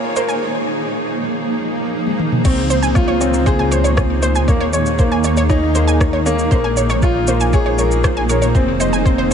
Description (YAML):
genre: piano and strings electronica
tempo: 118 BPM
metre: 4/4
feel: straight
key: Db major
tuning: A4 = 439 Hz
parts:
  - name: granular cloud pad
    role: sustained chords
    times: 0.0-9.3 s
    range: F3 to Db5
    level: -20 LUFS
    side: right 1 dB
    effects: built-in reverb, sidechain pumping
  - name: analog pluck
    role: arpeggios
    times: 0.0-9.3 s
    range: C5 to Ab5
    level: -22 LUFS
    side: right 2 dB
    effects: chorus, sidechain pumping, ping-pong delay
  - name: warm upright piano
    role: riff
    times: 0.0-9.3 s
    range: Bb3 to Eb5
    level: -20 LUFS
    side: left 1 dB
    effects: ping-pong delay
  - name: organic electronic drum kit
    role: drums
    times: 0.2-9.3 s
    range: crash cymbal, rim click, shaker, toms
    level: -25 LUFS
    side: equal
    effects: none
  - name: dark detuned saw bass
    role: bass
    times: 2.4-9.3 s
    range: F1 to Eb2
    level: -19 LUFS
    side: equal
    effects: sidechain pumping
  - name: electronic kick drum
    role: drums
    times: 2.5-9.2 s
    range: none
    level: -16 LUFS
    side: equal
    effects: none
room: light reverb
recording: nothing above 11.0 kHz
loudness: -14 LUFS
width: side -7 dB against mid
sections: 0.0-2.4 A section; 2.4-9.3 B section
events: build-up 0.0-2.4; drum fill 2.1-2.4; drop 2.4-9.3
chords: 0.4 Fm7; 2.4 Dbmaj7; 4.5 Eb5; 6.5 Bbm7; 8.6 Fm7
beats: | 0.41 0.92 1.43 1.94 | 2.45 2.96 3.47 3.98 | 4.48 4.99 5.50 6.01 | 6.52 7.03 7.53 8.04 | 8.55 9.06